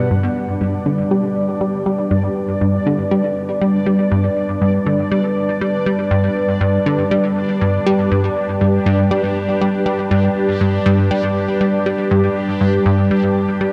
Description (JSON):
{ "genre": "ambient, sequencer-driven space music", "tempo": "120 BPM", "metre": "4/4", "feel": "straight", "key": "G major", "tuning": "A4 = 441 Hz", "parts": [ { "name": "sweeping resonant pad", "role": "sustained chords", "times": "0.0-13.7 s", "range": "G3 to D5", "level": "-21 LUFS", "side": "equal", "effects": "chorus" }, { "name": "plucky analog bass", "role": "riff", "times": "0.0-13.7 s", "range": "G2 to G3", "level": "-19 LUFS", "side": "equal", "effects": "tape echo" }, { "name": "bubbling stepped-filter texture", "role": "texture", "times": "0.0-13.7 s", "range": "D4 to F#5", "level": "-28 LUFS", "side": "equal", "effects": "chorus, built-in reverb, shimmer reverb" } ], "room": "wet cathedral reverb, RT60 5.8 s", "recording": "in a vast, echoing space", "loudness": "-17 LUFS", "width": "mono", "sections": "0.1-13.7 A section", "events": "none", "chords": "0.1 G", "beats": "| 0.11 0.61 1.11 1.61 | 2.11 2.61 3.11 3.61 | 4.11 4.61 5.11 5.61 | 6.11 6.61 7.11 7.61 | 8.11 8.61 9.11 9.61 | 10.11 10.61 11.11 11.61 | 12.11 12.61 13.11 13.61" }